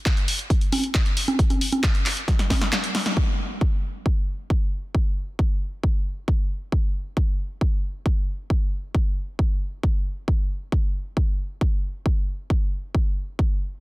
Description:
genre	trance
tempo	135 BPM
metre	4/4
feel	straight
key	none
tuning	none
part	electronic kick drum	drums	0.1-13.5 s	none	-22 LUFS	equal	none
part	punchy analog drum machine	drums	0.1-3.1 s	congas, handclaps, hi-hat, snare drum	-24 LUFS	equal	none
room	digital ambience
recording	dense, heavily limited modern master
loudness	-21 LUFS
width	side -20 dB against mid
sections	0.0-3.2 A section; 3.2-13.8 B section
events	drum fill 2.3-3.2; kick drops out 2.7-3.2; band accent 3.1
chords	none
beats	0.06 0.50 0.95 | 1.39 1.84 2.28 2.72 | 3.17 3.61 4.06 4.50 | 4.95 5.39 5.84 6.28 | 6.72 7.17 7.61 8.06 | 8.50 8.95 9.39 9.84 | 10.28 10.72 11.17 11.61 | 12.06 12.50 12.95 13.39

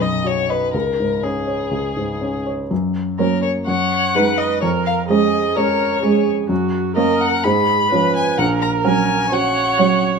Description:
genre	quick classical-period movement for piano quartet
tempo	126 BPM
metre	4/4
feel	uneven beats, rubato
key	F# major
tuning	A4 = 440 Hz
part	rich violin	melody	0.0-10.0 s	G#4 to B5	-20 LUFS	left 5 dB	none
part	warm baby grand piano	accompaniment	0.0-10.2 s	A#1 to D#5	-20 LUFS	equal	none
part	rich cello	second line	3.2-10.1 s	E#3 to A#3	-21 LUFS	right 8 dB	none
part	warm viola	accompaniment	3.7-10.2 s	F#4 to C#5	-20 LUFS	right 7 dB	none
room	moderate large studio reverb, RT60 1.2 s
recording	minimal, uncompressed stereo recording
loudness	-16 LUFS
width	side -5 dB against mid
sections	0.0-2.7 A section; 2.7-10.2 B section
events	none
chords	0.0 B; 0.7 C#5; 2.7 F#; 3.7 G#m7/F#; 4.6 C#/E#; 6.5 F#; 7.5 C#7/G#; 8.4 F#/A#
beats	0.25 | 0.74 1.24 1.72 2.21 | 2.71 3.19 3.68 4.16 | 4.62 5.09 5.56 6.03 | 6.50 6.97 7.45 7.92 | 8.38 8.85 9.32 9.78

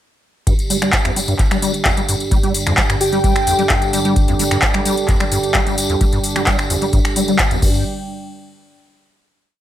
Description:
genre	acid house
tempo	130 BPM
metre	4/4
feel	straight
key	unclear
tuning	A4 = 438 Hz
part	warm analog pad	sustained chords	0.5-7.8 s	G2 to G5	-22 LUFS	right 3 dB	chorus, sidechain pumping
part	deep acid bass	riff	0.5-7.8 s	F2 to G3	-21 LUFS	left 1 dB	overdrive, ensemble chorus, cassette tape, sidechain pumping, tape echo
part	electro analog drum machine	drums	0.5-7.7 s	crash cymbal, finger snaps, handclaps, hi-hat	-20 LUFS	left 1 dB	none
part	electronic kick drum	drums	0.5-7.7 s	none	-18 LUFS	equal	none
part	tambourine	percussion	0.5-7.8 s	none	-26 LUFS	left 2 dB	none
part	airy dreamy lead	melody	3.0-3.9 s	G4	-20 LUFS	equal	chorus, analog delay
room	light reverb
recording	none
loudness	-14 LUFS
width	side -12 dB against mid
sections	0.5-7.9 drop; 7.9-9.6 final hit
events	drop 0.5-7.9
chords	0.5 G5; 7.9 N.C.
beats	| 0.47 0.93 1.39 1.85 | 2.32 2.78 3.24 3.70 | 4.16 4.62 5.08 5.55 | 6.01 6.47 6.93 7.39

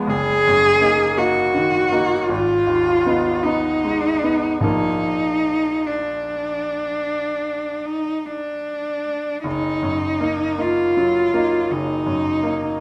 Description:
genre	classical, romantic duo for cello and grand piano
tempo	49-57 BPM (dotted quarters)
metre	12/8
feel	rubato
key	Eb minor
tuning	A4 = 440 Hz
part	clear cello	melody	0.0-12.8 s	Ab3 to Ab4	-21 LUFS	equal	none
part	bright concert grand piano	accompaniment	0.0-12.8 s	Gb1 to Eb4	-26 LUFS	equal	none
room	moderate recital hall reverb, RT60 1.3 s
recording	dark, warm production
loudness	-20 LUFS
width	mono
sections	0.0-12.8 A section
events	none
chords	0.1 Ebm/Gb; 2.3 Abm; 4.6 Bb; 9.5 Ebm/Gb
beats	| 0.10 1.18 2.29 3.44 | 4.63 5.86 7.07 8.26 | 9.45 10.60 11.72

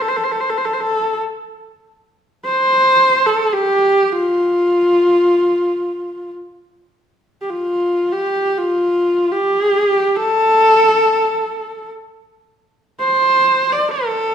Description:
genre	mongolian traditional, Mongolian folk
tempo	free time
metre	none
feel	none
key	F gong mode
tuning	A4 = 442 Hz
part	clear horsehead fiddle	solo	0.0-14.3 s	F4 to D5	-14 LUFS	equal	none
room	wet recital hall reverb, RT60 1.4 s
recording	minimal, uncompressed stereo recording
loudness	-13 LUFS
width	side -8 dB against mid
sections	0.0-6.9 A section; 6.9-14.3 A section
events	none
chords	none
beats	free time

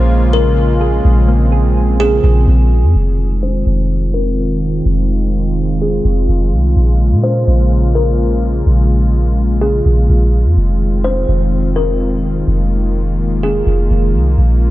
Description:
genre	hip hop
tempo	126 BPM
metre	4/4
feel	half-time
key	unclear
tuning	A4 = 440 Hz
part	kalimba	melody	0.0-13.9 s	Ab4 to C5	-21 LUFS	left 1 dB	low-pass filter, tape echo
part	warm analog pad	sustained chords	0.0-14.7 s	Db3 to F4	-18 LUFS	left 1 dB	chorus, low-pass filter
part	soft electric-piano-like synth keys	arpeggios	0.0-3.0 s	Bb3 to Ab4	-23 LUFS	right 6 dB	chorus, low-pass filter, tape echo
part	soft 808-style bass	bass	0.0-14.7 s	F1 to Bb2	-13 LUFS	equal	none
room	digital ambience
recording	dark, warm production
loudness	-11 LUFS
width	side -16 dB against mid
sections	0.0-3.0 A section; 3.0-14.7 B section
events	filter sweep 3.0-14.7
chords	0.0 Bbm7; 3.0 Fm7; 6.8 Bbm7; 10.6 Fm7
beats	0.10 0.57 | 1.05 1.52 2.00 2.48 | 2.95 3.43 3.90 4.38 | 4.86 5.33 5.81 6.29 | 6.76 7.24 7.71 8.19 | 8.67 9.14 9.62 10.10 | 10.57 11.05 11.52 12.00 | 12.48 12.95 13.43 13.90 | 14.38

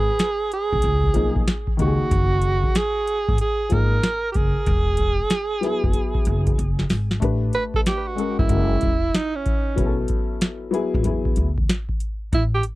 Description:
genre	hip hop, jazz-hop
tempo	94 BPM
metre	4/4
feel	swing 64% on 16ths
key	unclear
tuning	A4 = 440 Hz
part	breathy alto saxophone	melody	0.0-12.6 s	C#4 to B4	-24 LUFS	right 3 dB	tape echo
part	upright bass	bass	0.0-12.6 s	E1 to E2	-22 LUFS	equal	none
part	booming analog drum machine	drums	0.2-12.8 s	hi-hat, kick drum, snare drum	-23 LUFS	equal	none
part	warm upright piano	accompaniment	1.1-11.5 s	D#3 to B4	-26 LUFS	left 4 dB	none
room	little or no reverb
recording	dry, close 1970s-style studio recording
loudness	-19 LUFS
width	side -18 dB against mid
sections	0.0-7.2 A section; 7.2-12.8 B section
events	drum fill 6.6-7.2; alto saxophone solo 7.2-12.8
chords	0.0 G#m; 0.8 C#9; 2.1 F#add9; 4.7 E; 7.2 Gmaj9#11; 8.5 F#7; 9.8 B5; 11.1 E7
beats	0.20 0.84 1.48 | 2.12 2.75 3.39 4.03 | 4.67 5.31 5.95 6.58 | 7.22 7.86 8.50 9.14 | 9.77 10.41 11.05 11.69 | 12.33

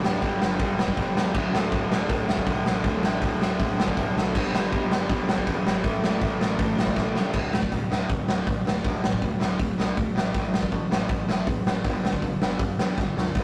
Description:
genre	punk rock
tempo	160 BPM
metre	4/4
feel	straight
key	unclear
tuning	A4 = 440 Hz
part	distorted electric guitar	riff	0.0-13.4 s	D2 to A3	-33 LUFS	equal	distortion
part	raw garage guitar	riff	0.0-7.3 s	D2 to A3	-32 LUFS	equal	overdrive
part	fuzz picked electric bass	bass	0.0-13.4 s	D1 to G2	-35 LUFS	equal	overdrive
part	raw garage drum kit	drums	0.0-13.4 s	crash cymbal, hi-hat, kick drum, snare drum	-27 LUFS	equal	none
room	light reverb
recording	rough rehearsal-room recording, tube saturation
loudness	-25 LUFS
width	mono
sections	0.0-7.3 A section; 7.3-13.4 B section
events	drum fill 7.0-7.3, 13.0-13.4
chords	0.0 G5; 1.4 D5; 4.3 G5; 5.8 A5; 7.3 D5; 10.2 A5; 11.9 G5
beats	0.23 0.60 0.98 | 1.35 1.73 2.10 2.48 | 2.85 3.23 3.60 3.97 | 4.35 4.72 5.10 5.47 | 5.85 6.22 6.60 6.97 | 7.35 7.72 8.10 8.47 | 8.85 9.22 9.60 9.98 | 10.35 10.73 11.10 11.48 | 11.86 12.23 12.61 12.98 | 13.36

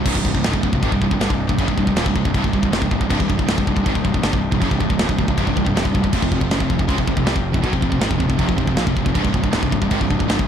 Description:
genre	heavy metal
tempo	158 BPM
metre	4/4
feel	straight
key	C minor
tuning	A4 = 440 Hz
part	pipe organ, soft reed	sustained chords	0.0-10.5 s	C3 to Eb4	-32 LUFS	left 1 dB	none
part	fuzz guitar	riff	0.0-10.5 s	C2 to Ab3	-25 LUFS	equal	distortion
part	heavy high-gain guitar	riff	0.0-10.5 s	C2 to Ab3	-24 LUFS	right 12 dB	distortion
part	scooped high-gain guitar	riff	0.0-10.5 s	C2 to Ab3	-25 LUFS	left 11 dB	distortion
part	fuzz picked electric bass	bass	0.1-10.5 s	C1 to Db2	-24 LUFS	left 1 dB	overdrive
part	tight metal drum kit	drums	0.1-10.5 s	china cymbal, crash cymbal, kick drum, snare drum	-21 LUFS	equal	none
room	light reverb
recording	dark, warm production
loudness	-16 LUFS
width	side -8 dB against mid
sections	0.1-10.5 A section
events	none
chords	0.1 Cm; 6.1 F5; 9.2 Cm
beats	| 0.06 0.44 0.82 1.20 | 1.58 1.96 2.34 2.72 | 3.10 3.48 3.85 4.23 | 4.61 4.99 5.37 5.75 | 6.13 6.51 6.88 7.26 | 7.64 8.02 8.40 8.78 | 9.16 9.54 9.91 10.29

